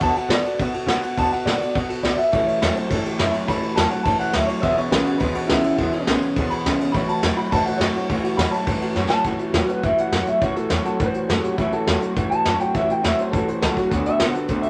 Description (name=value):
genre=rockabilly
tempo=208 BPM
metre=4/4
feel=straight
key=A major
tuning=A4 = 442 Hz
part: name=electric guitar through a small old amp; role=melody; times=0.0-14.7 s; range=E4 to B5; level=-26 LUFS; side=equal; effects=none
part: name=picked acoustic archtop guitar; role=accompaniment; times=0.0-14.7 s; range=A2 to A4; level=-29 LUFS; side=equal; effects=none
part: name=upright bass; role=bass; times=0.0-14.7 s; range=E1 to B2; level=-31 LUFS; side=equal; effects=none
part: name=soft brush drum kit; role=drums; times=0.0-14.7 s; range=hi-hat, kick drum, ride cymbal, snare drum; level=-27 LUFS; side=equal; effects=none
part: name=electric guitar through a small old amp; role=riff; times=2.3-14.7 s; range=E2 to B3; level=-27 LUFS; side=equal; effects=none
room=moderate studio reverb, RT60 0.8 s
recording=none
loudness=-21 LUFS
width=mono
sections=0.0-9.3 A section; 9.3-14.7 B section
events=clean electric guitar solo 0.0-9.3; drum fill 9.0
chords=0.0 D6; 2.3 A6; 4.6 E6; 6.9 A6; 13.9 D6